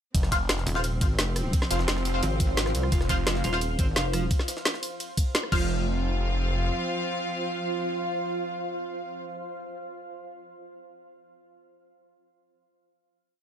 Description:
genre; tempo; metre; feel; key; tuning
dark technical drum and bass; 173 BPM; 4/4; straight; unclear; A4 = 440 Hz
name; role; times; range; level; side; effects
warm chamber string section; sustained chords; 0.1-9.2 s; C3 to F5; -34 LUFS; equal; vintage 12-bit sampler grit, sidechain pumping
phased detuned saw bass; bass; 0.1-3.4, 5.5-6.7 s; F1; -28 LUFS; equal; phaser, overdrive, sidechain pumping
drum and bass drum kit; drums; 0.1-5.6 s; crash cymbal, hi-hat, rim click, snare drum; -28 LUFS; equal; overdrive
electronic kick drum; drums; 0.1-5.6 s; none; -25 LUFS; equal; overdrive
jungle sampler-style drum kit; drums; 0.1-5.3 s; ride cymbal, snare drum; -38 LUFS; right 2 dB; high-pass filter on cymbals, high-pass filter on snare
granular cloud pad; texture; 1.3-9.2 s; F4 to F5; -34 LUFS; equal; built-in reverb, sidechain pumping
band-passed chord stab; stabs; 0.3-9.2 s; F4 to F5; -32 LUFS; left 2 dB; phaser, ensemble chorus, ping-pong delay
pulsing pluck wobble bass; bass; 0.7-4.3 s; Eb1 to C2; -28 LUFS; equal; chorus
clean electric guitar; arpeggios; 2.9-5.8 s; F3 to F4; -34 LUFS; right 5 dB; lush chorus, sidechain pumping, ping-pong delay
room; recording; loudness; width
digital ambience; none; -24 LUFS; side -9 dB against mid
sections
0.1-5.7 drop; 5.7-8.5 final note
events
drop 0.1-5.7; band accent 5.3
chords
0.1 F5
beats
| 0.15 0.49 0.84 1.19 | 1.53 1.88 2.23 2.57 | 2.92 3.27 3.61 3.96 | 4.31 4.65 5.00 5.35 | 5.70 6.04 6.39 6.74 | 7.08 7.43 7.78 8.12

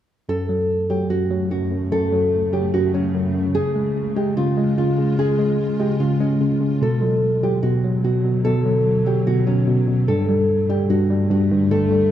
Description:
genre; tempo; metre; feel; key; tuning
hip hop; 147 BPM; 4/4; half-time; unclear; A4 = 441 Hz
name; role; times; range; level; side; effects
nylon-string guitar; melody; 0.3-12.1 s; C#4 to A4; -22 LUFS; right 1 dB; low-pass filter
mellow tine electric piano; accompaniment; 0.3-12.1 s; F#2 to G#3; -19 LUFS; equal; medium stereo tremolo, low-pass filter
granular cloud pad; sustained chords; 1.2-12.1 s; F#2 to E#4; -29 LUFS; equal; built-in reverb
room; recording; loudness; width
moderate plate reverb, RT60 2.5 s; rough home demo mix; -17 LUFS; side -11 dB against mid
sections
0.3-12.1 A section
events
none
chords
0.3 F#m; 3.6 C#; 6.8 Bm; 10.1 Gsus2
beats
| 0.29 0.70 1.10 1.51 | 1.92 2.33 2.74 3.15 | 3.55 3.96 4.37 4.78 | 5.18 5.59 6.00 6.41 | 6.82 7.23 7.63 8.04 | 8.45 8.86 9.27 9.68 | 10.08 10.49 10.90 11.31 | 11.72

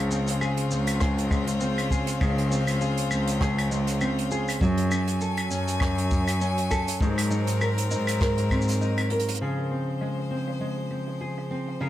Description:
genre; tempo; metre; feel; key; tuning
folktronica; 100 BPM; 4/4; swing 56% on 16ths; Db major; A4 = 440 Hz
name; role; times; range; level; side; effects
bright string quartet; sustained chords; 0.0-11.9 s; Db3 to Ab5; -32 LUFS; left 2 dB; none
nylon-string guitar; arpeggios; 0.0-11.9 s; Ab2 to Bb4; -28 LUFS; equal; vintage 12-bit sampler grit, low-pass filter, tape echo
muted cello; bass; 0.0-9.2 s; Db2 to Ab2; -27 LUFS; equal; none
jazz brush drum kit; drums; 0.1-11.9 s; claves, hi-hat, rim click, shaker; -32 LUFS; right 1 dB; low-pass filter on hats, low-pass filter on snare, low-pass filter on perc, low-pass filter on room
kick drum; drums; 1.0-8.6 s; none; -27 LUFS; equal; none
room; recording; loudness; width
light reverb; none; -23 LUFS; side -13 dB against mid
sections
0.0-9.4 A section; 9.4-11.9 B section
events
filter sweep on nylon-string guitar 0.0-9.4, 9.4-11.9; drum fill 9.1-9.4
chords
0.0 Dbmaj7; 4.6 Gbmadd9; 7.0 Ab9; 9.4 Dbmaj7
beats
0.41 1.01 1.61 | 2.21 2.81 3.41 4.01 | 4.61 5.21 5.81 6.41 | 7.01 7.61 8.21 8.81 | 9.41 10.01 10.61 11.21 | 11.81

